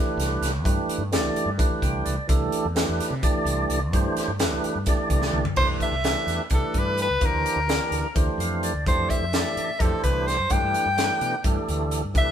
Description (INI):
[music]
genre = electric jazz fusion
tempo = 256 BPM (eighths)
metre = 7/8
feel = straight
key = C major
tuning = A4 = 443 Hz
[part]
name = tonewheel organ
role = accompaniment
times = 0.0-12.3 s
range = E3 to G5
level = -27 LUFS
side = right 2 dB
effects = slow rotary speaker
[part]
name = mellow fretless electric bass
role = bass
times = 0.1-12.3 s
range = C2 to C3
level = -29 LUFS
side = equal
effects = none
[part]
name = crisp fusion drum kit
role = drums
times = 0.2-12.3 s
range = crash cymbal, hi-hat, kick drum, snare drum, toms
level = -25 LUFS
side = equal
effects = none
[part]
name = warm soprano saxophone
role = melody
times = 5.6-12.3 s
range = A4 to G5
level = -24 LUFS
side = left 1 dB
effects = none
[sound]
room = moderate stone room reverb, RT60 1.2 s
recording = band playing live in one room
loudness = -21 LUFS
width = side -9 dB against mid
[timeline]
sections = 0.0-5.6 A section; 5.6-12.3 B section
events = tonewheel organ fill 1.6-2.3, 8.2-8.9; drum fill 5.2-5.6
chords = 0.0 Cmaj9; 5.6 Cmaj7; 7.2 Bb6/D; 8.9 Fmaj9; 10.5 G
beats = 0.18 0.41 | 0.65 0.88 1.12 1.35 1.58 1.82 2.05 | 2.29 2.52 2.76 2.99 3.23 3.46 3.69 | 3.93 4.16 4.40 4.63 4.87 5.10 5.34 | 5.57 5.81 6.04 6.28 6.51 6.75 6.98 | 7.22 7.45 7.69 7.92 8.16 8.39 8.63 | 8.86 9.10 9.33 9.57 9.80 10.04 10.27 | 10.51 10.74 10.98 11.21 11.45 11.68 11.91 | 12.15